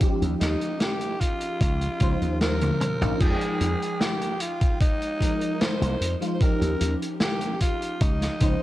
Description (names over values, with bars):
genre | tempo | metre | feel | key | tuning
vaporwave | 75 BPM | 4/4 | straight | F minor | A4 = 439 Hz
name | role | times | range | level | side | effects
FM electric piano with soft pad layer | accompaniment | 0.0-8.6 s | F3 to G5 | -29 LUFS | equal | ensemble chorus, vintage 12-bit sampler grit, tape echo
slap bass with an envelope filter | bass | 0.0-8.5 s | Bb1 to F2 | -26 LUFS | equal | none
electronic kick drum | drums | 0.0-8.6 s | none | -23 LUFS | equal | none
vintage drum kit | drums | 0.0-8.6 s | crash cymbal, hi-hat, snare drum, toms | -28 LUFS | equal | gated reverb
raspy alto saxophone | melody | 0.4-8.6 s | Eb4 to C5 | -30 LUFS | equal | vintage 12-bit sampler grit, tape echo
room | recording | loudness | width
studio reverb | none | -22 LUFS | side -15 dB against mid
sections
0.0-3.2 A section; 3.2-8.6 B section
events
drum fill 2.6-3.2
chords
0.0 Eb9; 3.2 Fm9; 6.4 Eb9